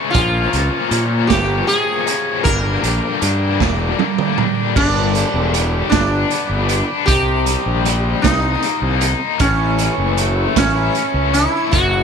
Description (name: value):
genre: psychedelic rock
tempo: 52 BPM (dotted quarters)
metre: 6/8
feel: straight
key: unclear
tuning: A4 = 439 Hz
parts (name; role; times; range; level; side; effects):
- combo organ; sustained chords; 0.0-12.0 s; C#5 to D6; -28 LUFS; right 13 dB; none
- biting overdriven guitar; riff; 0.0-12.0 s; F#2 to E4; -20 LUFS; left 14 dB; tremolo
- sitar; melody; 0.1-12.0 s; C#4 to Bb4; -20 LUFS; right 1 dB; slapback echo
- fuzz fingered electric bass; bass; 0.1-12.0 s; E1 to A#2; -19 LUFS; equal; overdrive
- raw garage drum kit; drums; 0.1-11.9 s; crash cymbal, hi-hat, kick drum, snare drum, toms; -20 LUFS; right 6 dB; none
room: studio ambience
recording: 1960s-style stereo with parts hard left and right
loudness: -14 LUFS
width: side -6 dB against mid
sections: 0.0-4.8 A section; 4.8-12.0 B section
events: drum fill 3.6-4.8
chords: 0.1 A#m; 2.4 Gm; 4.8 G; 7.1 Cm7; 9.4 A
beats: | 0.14 1.29 | 2.45 3.60 | 4.76 5.92 | 7.08 8.24 | 9.40 10.56 | 11.72